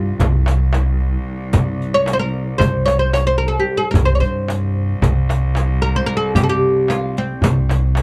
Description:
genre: Turkish makam ensemble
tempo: 224 BPM (eighths)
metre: 9/8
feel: straight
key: C makam hicaz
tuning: A4 = 438 Hz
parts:
  - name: oud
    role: melody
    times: 0.0-8.0 s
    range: C4 to Db5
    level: -21 LUFS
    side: equal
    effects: none
  - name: upright bass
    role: bass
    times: 0.0-8.0 s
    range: C2 to C3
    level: -20 LUFS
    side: equal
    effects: none
  - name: clear cello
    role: drone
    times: 0.0-8.0 s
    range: C2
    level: -30 LUFS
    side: equal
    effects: none
  - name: darbuka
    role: percussion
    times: 0.2-8.0 s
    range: none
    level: -24 LUFS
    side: equal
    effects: none
  - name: frame drum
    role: percussion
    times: 0.2-8.0 s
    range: none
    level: -26 LUFS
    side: equal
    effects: none
  - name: riq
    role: percussion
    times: 0.2-8.0 s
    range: none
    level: -31 LUFS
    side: equal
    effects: none
room: little or no reverb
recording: dark, warm production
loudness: -17 LUFS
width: mono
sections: 0.0-8.0 A section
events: none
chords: none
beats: 0.20 0.47 0.74 1.01 1.27 | 1.54 1.81 2.08 2.34 2.61 2.88 3.15 3.42 3.68 | 3.95 4.22 4.49 4.75 5.02 5.29 5.56 5.83 6.09 | 6.36 6.63 6.90 7.17 7.43 7.70 7.97

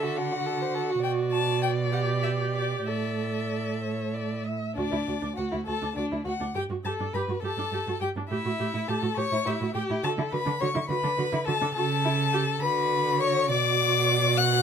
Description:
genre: quick classical-period movement for string quartet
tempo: 68 BPM (dotted quarters)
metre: 6/8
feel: rubato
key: D major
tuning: A4 = 438 Hz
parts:
  - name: rich violin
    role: melody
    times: 0.0-14.6 s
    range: D5 to F#6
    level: -29 LUFS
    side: left 6 dB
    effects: none
  - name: warm violin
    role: second line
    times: 0.0-14.6 s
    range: D4 to F#5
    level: -31 LUFS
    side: left 4 dB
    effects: none
  - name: rich viola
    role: accompaniment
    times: 0.0-14.6 s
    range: D4 to A4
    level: -31 LUFS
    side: right 4 dB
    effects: none
  - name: rich cello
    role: bass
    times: 0.0-14.6 s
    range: D2 to D3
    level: -30 LUFS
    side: right 4 dB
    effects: none
room: light reverb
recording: close, detailed microphones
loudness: -25 LUFS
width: side -7 dB against mid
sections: 0.0-4.8 A section; 4.8-14.6 B section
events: none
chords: 0.0 D; 1.0 G/B; 2.9 Asus4; 4.8 D; 6.6 G5; 8.3 A5; 10.0 D; 11.8 A/C#; 12.6 D; 13.5 Bm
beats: 0.17 | 1.04 1.93 | 2.87 3.83 | 4.77 5.67 | 6.55 7.43 | 8.30 9.17 | 10.04 10.89 | 11.75 12.62 | 13.50 14.38

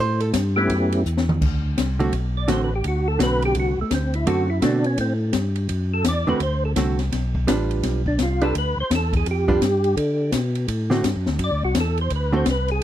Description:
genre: soul jazz organ trio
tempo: 168 BPM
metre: 4/4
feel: swing 63% on 8ths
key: D mixolydian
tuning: A4 = 441 Hz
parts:
  - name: hollow-body jazz guitar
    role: accompaniment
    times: 0.0-12.5 s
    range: D3 to C5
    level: -23 LUFS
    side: right 3 dB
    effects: none
  - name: tonewheel organ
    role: bass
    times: 0.0-12.8 s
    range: A1 to D3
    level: -22 LUFS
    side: equal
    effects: overdrive, chorus vibrato, slow rotary speaker
  - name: open jazz drum kit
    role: drums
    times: 0.2-12.7 s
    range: crash cymbal, hi-hat, kick drum, ride cymbal, snare drum, toms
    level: -26 LUFS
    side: left 2 dB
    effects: none
  - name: percussive tonewheel organ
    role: melody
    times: 0.6-12.8 s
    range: A3 to D5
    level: -24 LUFS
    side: equal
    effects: slow rotary speaker, chorus vibrato
room: studio ambience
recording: dry, close 1970s-style studio recording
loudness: -19 LUFS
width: side -12 dB against mid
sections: 0.0-1.4 A section; 1.4-12.8 A section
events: hollow-body jazz guitar solo 0.0-1.4; drum fill 1.1-1.4; tonewheel organ solo 1.4-12.8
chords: 0.0 A7; 1.4 D7; 7.1 G7; 10.0 D7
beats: 0.34 0.70 1.06 | 1.41 1.77 2.13 2.48 | 2.84 3.20 3.56 3.91 | 4.27 4.62 4.98 5.34 | 5.69 6.05 6.41 6.76 | 7.12 7.47 7.83 8.19 | 8.54 8.90 9.26 9.61 | 9.97 10.32 10.68 11.04 | 11.39 11.75 12.11 12.46 | 12.82

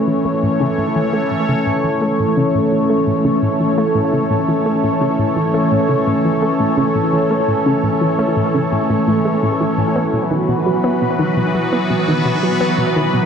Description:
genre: ambient, sequencer-driven space music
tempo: 85 BPM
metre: 4/4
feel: straight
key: A major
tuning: A4 = 439 Hz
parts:
  - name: sweeping resonant pad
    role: sustained chords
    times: 0.0-13.3 s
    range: E3 to C#5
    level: -15 LUFS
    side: equal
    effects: chorus
  - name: analog pluck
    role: riff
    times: 0.0-13.3 s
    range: A2 to B3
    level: -19 LUFS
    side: equal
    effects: chorus, tape echo
room: wet concert hall reverb, RT60 2.5 s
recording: dark, warm production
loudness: -14 LUFS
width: side -7 dB against mid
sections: 0.0-13.3 A section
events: filter sweep on synth arpeggio sound 0.0-13.3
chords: 0.0 A; 10.0 Bsus4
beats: 0.08 0.78 | 1.49 2.19 2.90 3.61 | 4.31 5.02 5.72 6.43 | 7.14 7.84 8.55 9.25 | 9.96 10.66 11.37 12.08 | 12.78

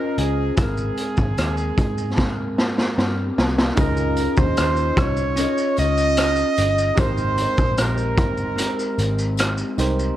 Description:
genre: indie pop, bedroom pop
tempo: 75 BPM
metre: 4/4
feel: straight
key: Ab major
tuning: A4 = 439 Hz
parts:
  - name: warm trumpet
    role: melody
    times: 0.0-9.4 s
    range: Ab4 to Eb5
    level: -24 LUFS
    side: right 3 dB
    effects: wide subtle chorus
  - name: electric guitar through a small old amp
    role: accompaniment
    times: 0.0-10.2 s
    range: Ab3 to Eb5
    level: -26 LUFS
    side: left 3 dB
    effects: analog chorus, warbly pitch drift
  - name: vintage muted picked electric bass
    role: bass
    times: 0.2-10.1 s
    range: G1 to Ab2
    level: -24 LUFS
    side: equal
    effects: none
  - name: raw garage drum kit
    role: drums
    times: 0.2-10.2 s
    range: hi-hat, kick drum, rim click, shaker, snare drum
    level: -22 LUFS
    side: equal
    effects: none
  - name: soft electric-piano-like synth keys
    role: accompaniment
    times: 3.8-10.2 s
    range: Eb4 to Eb5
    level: -30 LUFS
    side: right 4 dB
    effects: chorus
  - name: tambourine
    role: percussion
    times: 3.8-10.0 s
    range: none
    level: -42 LUFS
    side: left 16 dB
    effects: none
room: moderate spring reverb, RT60 2.5 s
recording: dark, warm production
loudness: -18 LUFS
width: side -13 dB against mid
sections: 0.0-3.8 A section; 3.8-10.2 B section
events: drum fill 2.2-3.8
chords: 0.0 Dbmaj9; 0.6 Abmaj9; 3.8 Dbmaj9; 7.0 Abmaj9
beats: | 0.58 1.38 2.18 2.98 | 3.78 4.58 5.38 6.18 | 6.98 7.78 8.58 9.38

